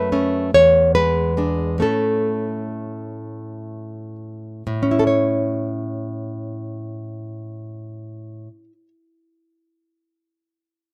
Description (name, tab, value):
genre	romantic piece for solo classical guitar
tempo	40-51 BPM (dotted quarters)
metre	6/8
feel	rubato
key	A major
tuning	A4 = 440 Hz
part	nylon-string guitar	solo	0.0-8.9 s	E2 to C#5	-22 LUFS	equal	none
room	light reverb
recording	none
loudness	-20 LUFS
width	mono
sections	0.0-4.7 A section; 4.7-7.6 B section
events	slowing down 0.0-4.7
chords	0.0 F#m; 0.5 E7; 1.8 A